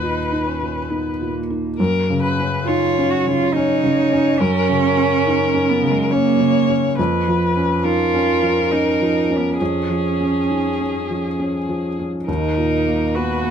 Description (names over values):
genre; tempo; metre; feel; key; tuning
neoclassical piano and strings; 68 BPM; 3/4; rubato; F# major; A4 = 440 Hz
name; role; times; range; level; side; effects
muted violin; melody; 0.0-13.5 s; G#4 to C#5; -22 LUFS; left 5 dB; none
muted cello; second line; 0.0-13.5 s; G#3 to F#4; -21 LUFS; right 7 dB; none
felt-muted upright piano; accompaniment; 0.0-13.5 s; D#2 to E#4; -20 LUFS; equal; none
room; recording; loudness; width
little or no reverb; close, detailed microphones; -16 LUFS; side -8 dB against mid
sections
0.0-1.8 A section; 1.8-13.5 A section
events
none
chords
0.0 Bmaj7/D#; 1.8 F#; 7.0 C#7/E#; 12.3 D#m